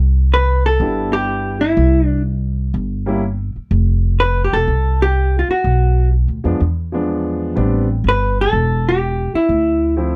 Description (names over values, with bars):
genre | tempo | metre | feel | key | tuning
jazz, small-group swing and bop | 124 BPM | 4/4 | swing 68% on 8ths | C major | A4 = 440 Hz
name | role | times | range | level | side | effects
upright bass | bass | 0.0-10.2 s | E1 to F2 | -19 LUFS | equal | none
vintage hollow-body jazz guitar | melody | 0.3-9.9 s | E4 to B4 | -19 LUFS | equal | none
clear concert grand piano | accompaniment | 0.8-3.2, 6.4-10.2 s | F3 to E4 | -23 LUFS | equal | none
room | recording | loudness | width
light reverb | dark, warm production | -17 LUFS | mono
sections
0.0-10.2 A section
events
none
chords
0.0 Cmaj9; 1.8 C; 3.7 F; 5.6 Bm; 6.6 E7b9; 7.6 Am11; 9.5 Dm7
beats
0.32 0.81 1.29 | 1.77 2.26 2.74 3.23 | 3.71 4.19 4.67 5.16 | 5.64 6.12 6.60 7.08 | 7.57 8.05 8.53 9.01 | 9.49 9.97